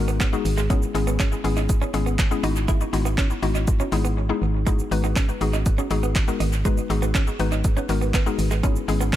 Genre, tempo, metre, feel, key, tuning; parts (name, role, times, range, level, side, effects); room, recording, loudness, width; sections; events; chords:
dance-pop; 121 BPM; 4/4; straight; G# minor; A4 = 440 Hz
mallet-like synth pluck; accompaniment; 0.0-9.2 s; G#3 to B4; -26 LUFS; left 6 dB; chorus, sidechain pumping, tape echo
organ-like FM bass; bass; 0.0-9.2 s; G#1; -24 LUFS; equal; sidechain pumping
direct-recorded clean electric guitar; riff; 0.1-9.2 s; G#3 to E4; -31 LUFS; right 5 dB; lush chorus, tape echo
punchy analog drum machine; drums; 0.1-9.2 s; handclaps, hi-hat, kick drum, shaker; -24 LUFS; equal; tape echo
little or no reverb; echo-heavy mix; -20 LUFS; side -13 dB against mid
0.0-9.2 A section
silent gap 4.2-4.7
0.0 G#m7; 0.7 C#m7/G#; 2.4 Emaj9/G#; 4.7 G#m7; 8.6 C#m7/G#